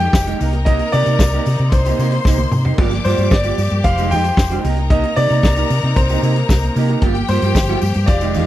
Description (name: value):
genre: disco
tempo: 113 BPM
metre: 4/4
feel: straight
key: C minor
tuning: A4 = 441 Hz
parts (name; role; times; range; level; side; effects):
- clear concert grand piano; melody; 0.0-8.5 s; C5 to G5; -21 LUFS; left 1 dB; tape echo
- clear studio string section; second line; 0.0-8.5 s; F4 to D6; -26 LUFS; left 4 dB; none
- semi-hollow electric guitar; accompaniment; 0.0-8.5 s; Ab3 to Bb4; -23 LUFS; right 7 dB; none
- clear studio string section; sustained chords; 0.0-8.5 s; C3 to G4; -26 LUFS; left 2 dB; none
- hollow-body short-scale fingered electric bass; bass; 0.0-8.5 s; F1 to C3; -17 LUFS; equal; none
- warm soul drum kit; drums; 0.0-8.5 s; crash cymbal, hi-hat, kick drum, snare drum, toms; -16 LUFS; equal; none
- tambourine; percussion; 0.1-8.5 s; none; -36 LUFS; left 22 dB; none
room: little or no reverb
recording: dry, close 1970s-style studio recording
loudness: -13 LUFS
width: side -13 dB against mid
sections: 0.0-8.5 A section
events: drum fill 2.3-2.8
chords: 0.4 Cm7; 2.8 Gm7; 3.8 Fm9; 4.6 Cm7; 7.0 Gm7